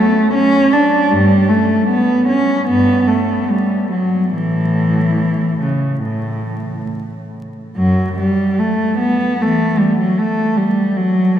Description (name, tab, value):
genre	classical, baroque-style suite movement for unaccompanied cello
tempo	68-78 BPM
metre	4/4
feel	rubato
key	unclear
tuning	A4 = 440 Hz
part	warm cello	solo	0.0-11.4 s	F#2 to D4	-13 LUFS	equal	none
room	wet cathedral reverb, RT60 5.3 s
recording	in a vast, echoing space, vinyl crackle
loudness	-13 LUFS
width	side -10 dB against mid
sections	0.0-7.8 A section; 7.8-11.4 B section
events	none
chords	none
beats	0.33 | 1.12 1.89 2.68 3.49 | 4.35 5.20 6.05 6.90 | 7.76 8.58 9.39 10.18 | 10.96